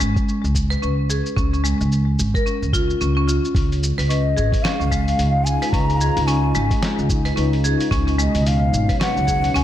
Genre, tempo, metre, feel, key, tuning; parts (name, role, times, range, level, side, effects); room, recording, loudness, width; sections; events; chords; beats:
organic downtempo; 110 BPM; 4/4; swing 58% on 16ths; Db mixolydian; A4 = 443 Hz
marimba with hard mallets; arpeggios; 0.0-9.6 s; Ab3 to Cb5; -23 LUFS; left 1 dB; ping-pong delay
upright bass; bass; 0.0-9.6 s; Ab1 to Db2; -20 LUFS; equal; sidechain pumping
dusty soul sampler-style drum kit; drums; 0.0-9.6 s; hi-hat, shaker, snare drum; -28 LUFS; equal
electronic kick drum; drums; 0.2-9.4 s; -22 LUFS; equal
warm analog pad; sustained chords; 3.5-9.6 s; Cb3 to F4; -26 LUFS; equal; chorus, sidechain pumping
breathy hollow bansuri; melody; 4.1-9.6 s; Eb5 to Bb5; -24 LUFS; left 2 dB; ping-pong delay
moderate recital hall reverb, RT60 1.5 s; dark, warm production; -17 LUFS; side -12 dB against mid
0.0-9.6 A section
0.0 Absus4; 1.4 Bbm (rootless); 3.6 Db; 7.9 Cb6
0.28 0.83 | 1.37 1.92 2.46 3.01 | 3.56 4.10 4.65 5.19 | 5.74 6.28 6.83 7.37 | 7.92 8.46 9.01 9.56